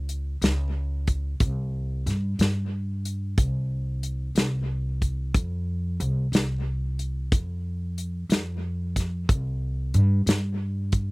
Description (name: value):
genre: slow blues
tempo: 61 BPM (dotted quarters)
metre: 12/8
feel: straight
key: unclear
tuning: A4 = 440 Hz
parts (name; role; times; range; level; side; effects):
- upright bass; bass; 0.0-11.1 s; C2 to G2; -26 LUFS; equal; none
- natural country drum kit; drums; 0.1-11.1 s; hi-hat, kick drum, snare drum; -23 LUFS; equal; none
room: little or no reverb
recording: recorded outdoors, with no room sound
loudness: -24 LUFS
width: side -25 dB against mid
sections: 0.0-11.1 A section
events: none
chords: none